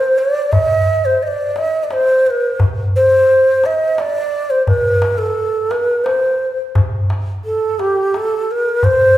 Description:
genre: Arabic maqam ensemble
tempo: 87 BPM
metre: 3/4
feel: straight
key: C maqam rast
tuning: A4 = 438 Hz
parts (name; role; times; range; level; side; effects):
- breathy mellow ney; melody; 0.0-9.2 s; G4 to E5-39c; -13 LUFS; equal; none
- darbuka; percussion; 0.5-9.0 s; none; -18 LUFS; left 1 dB; none
room: wet recital hall reverb, RT60 1.5 s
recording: recorded in a church or concert hall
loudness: -13 LUFS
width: side -13 dB against mid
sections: 0.0-9.2 A section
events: none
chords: none

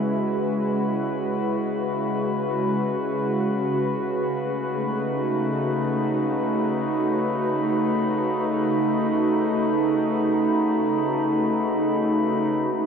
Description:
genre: ambient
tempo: free time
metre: none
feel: none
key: unclear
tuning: A4 = 441 Hz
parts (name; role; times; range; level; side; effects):
- warbly tape-like pad; sustained chords; 0.0-12.9 s; C#3 to B4; -21 LUFS; equal; chorus, built-in reverb
- glass harmonica; texture; 0.0-12.6 s; B5; -32 LUFS; left 2 dB; stereo widening
room: wet huge ambient reverb, RT60 8.6 s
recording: dark, warm production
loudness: -21 LUFS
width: side -6 dB against mid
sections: 0.0-12.6 A section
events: fade-in on glass harmonica 0.0-12.6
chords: 0.0 C#m7; 3.4 B9/C#

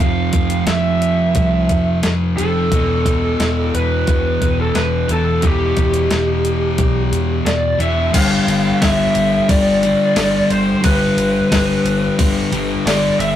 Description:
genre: rock, shoegaze and dream pop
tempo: 89 BPM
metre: 4/4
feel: straight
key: G mixolydian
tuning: A4 = 440 Hz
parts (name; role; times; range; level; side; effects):
- lead guitar through a small cranked amp; melody; 0.0-13.4 s; G4 to F5; -19 LUFS; equal; overdrive
- fuzz guitar; riff; 0.0-13.4 s; E2 to C4; -18 LUFS; equal; distortion
- vintage muted fingered electric bass; bass; 0.0-13.4 s; E1 to C2; -22 LUFS; equal; none
- crisp 8-bit digital drum machine; drums; 0.3-13.4 s; crash cymbal, hi-hat, kick drum, ride cymbal, snare drum; -19 LUFS; equal; overdrive
room: moderate studio reverb, RT60 0.5 s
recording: rough rehearsal-room recording, warm saturation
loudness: -14 LUFS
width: side -11 dB against mid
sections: 0.0-8.1 A section; 8.1-13.4 B section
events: none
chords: 0.0 F5; 2.7 Em; 8.1 G

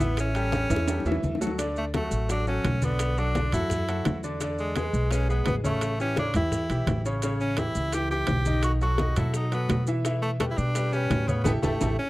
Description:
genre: latin, salsa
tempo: 170 BPM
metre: 4/4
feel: straight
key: unclear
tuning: A4 = 441 Hz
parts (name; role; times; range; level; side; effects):
- edgy tenor saxophone; melody; 0.0-12.1 s; G#3 to G4; -30 LUFS; equal; none
- bright grand piano; accompaniment; 0.0-11.9 s; C#3 to E5; -31 LUFS; equal; none
- upright bass; bass; 0.0-11.9 s; A1 to B2; -28 LUFS; equal; none
- congas; percussion; 0.0-11.9 s; none; -30 LUFS; equal; none
- maracas; percussion; 0.0-11.9 s; none; -41 LUFS; right 5 dB; none
- bongos; percussion; 0.2-11.9 s; none; -36 LUFS; left 5 dB; none
- timbales; percussion; 0.2-11.9 s; none; -34 LUFS; right 4 dB; none
room: small room ambience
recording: dry, close 1970s-style studio recording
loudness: -24 LUFS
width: side -18 dB against mid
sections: 0.0-1.6 A section; 1.6-12.1 B section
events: drum fill 0.5-1.6, 11.5-12.1; band accent 11.5-12.1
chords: 0.2 A7; 1.6 Dmaj7; 3.0 Bm7; 4.4 E7; 5.8 A7; 8.6 B7; 10.1 Em7/B; 11.5 A7(no3)

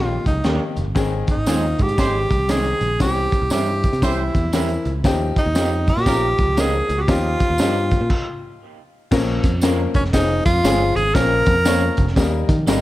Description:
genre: uptempo 1960s-style soul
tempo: 118 BPM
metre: 4/4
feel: swing 63% on 8ths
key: unclear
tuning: A4 = 440 Hz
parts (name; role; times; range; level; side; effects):
- breathy tenor saxophone; melody; 0.0-12.2 s; Db4 to Bb4; -21 LUFS; right 1 dB; none
- clear upright piano; accompaniment; 0.0-12.8 s; Eb3 to Db5; -25 LUFS; left 6 dB; none
- picked electric bass; bass; 0.0-12.8 s; F1 to Eb3; -22 LUFS; equal; none
- crunchy breakbeat drum kit; drums; 0.3-12.8 s; crash cymbal, hi-hat, kick drum, snare drum; -21 LUFS; equal; none
- congas; percussion; 0.3-12.8 s; none; -35 LUFS; right 1 dB; none
- electric guitar through a small old amp; stabs; 0.4-12.8 s; F3 to Bb4; -30 LUFS; right 4 dB; tape echo
- tambourine; percussion; 1.0-12.8 s; none; -36 LUFS; right 4 dB; none
- warm horn section; second line; 2.0-6.3 s; Eb4 to C5; -29 LUFS; right 4 dB; none
room: light reverb, small room reverb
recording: none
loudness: -16 LUFS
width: side -16 dB against mid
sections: 1.0-9.1 A section; 9.1-12.8 B section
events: stop 8.1-9.1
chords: 0.0 Eb; 1.0 Ab; 3.0 C; 5.0 Ebadd9; 9.1 Bbm; 10.1 Fm; 11.2 Bbm; 12.2 Eb

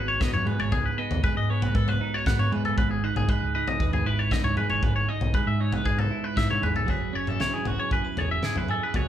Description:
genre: math rock and midwest emo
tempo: 117 BPM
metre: 4/4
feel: straight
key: E major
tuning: A4 = 440 Hz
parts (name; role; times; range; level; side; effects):
- twelve-string electric guitar; accompaniment; 0.0-9.1 s; G#2 to B4; -30 LUFS; right 4 dB; none
- twangy electric guitar; arpeggios; 0.0-9.1 s; F#4 to F#5; -28 LUFS; left 2 dB; none
- hollow-body short-scale fingered electric bass; bass; 0.0-9.0 s; E1 to G#2; -29 LUFS; equal; none
- loose indie drum kit; drums; 0.2-9.1 s; kick drum, snare drum, toms; -28 LUFS; left 1 dB; none
room: moderate large studio reverb, RT60 1.1 s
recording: band playing live in one room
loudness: -23 LUFS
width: side -11 dB against mid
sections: 0.0-6.9 A section; 6.9-9.1 B section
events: drum fill 6.4-6.9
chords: 0.0 G#m7; 2.8 Emaj7/G#; 6.9 F#7sus2

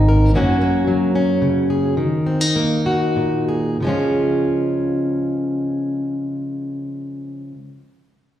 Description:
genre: folk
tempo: 90-113 BPM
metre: 3/4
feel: straight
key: Db major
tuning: A4 = 440 Hz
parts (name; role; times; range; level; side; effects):
- fingerpicked plugged-in steel-string acoustic guitar; accompaniment; 0.0-7.6 s; Gb2 to Bb4; -17 LUFS; equal; slapback echo
room: moderate club reverb, RT60 0.6 s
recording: live gig heard through the venue's PA, recital hall reverb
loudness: -17 LUFS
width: side -11 dB against mid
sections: 0.0-3.8 A section; 3.8-7.8 B section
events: slowing down 0.3-3.8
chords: 0.3 Gb; 2.0 Ebm; 3.8 Db

